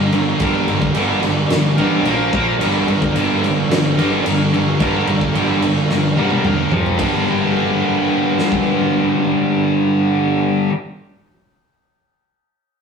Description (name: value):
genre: hard rock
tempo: 109 BPM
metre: 4/4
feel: straight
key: G minor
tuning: A4 = 441 Hz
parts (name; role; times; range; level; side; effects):
- distorted electric guitar; riff; 0.0-10.7 s; F2 to Bb3; -20 LUFS; right 4 dB; distortion
- distorted electric guitar; riff; 0.0-10.7 s; G2 to Bb4; -21 LUFS; right 1 dB; overdrive
- scooped high-gain guitar; riff; 0.0-10.7 s; F2 to Bb3; -19 LUFS; left 4 dB; distortion
- hollow-body short-scale fingered electric bass; bass; 0.0-10.7 s; E1 to G2; -25 LUFS; equal; none
- huge arena drum kit; drums; 0.1-8.6 s; crash cymbal, kick drum, snare drum, toms; -22 LUFS; equal; none
room: wet stone room reverb, RT60 0.9 s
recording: rough rehearsal-room recording, small room ambience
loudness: -14 LUFS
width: side -6 dB against mid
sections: 0.0-7.0 A section; 7.0-9.2 B section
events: drum fill 5.9-7.0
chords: 0.0 Gm; 2.0 Bb5; 2.6 Gm; 6.7 F5; 7.0 Gm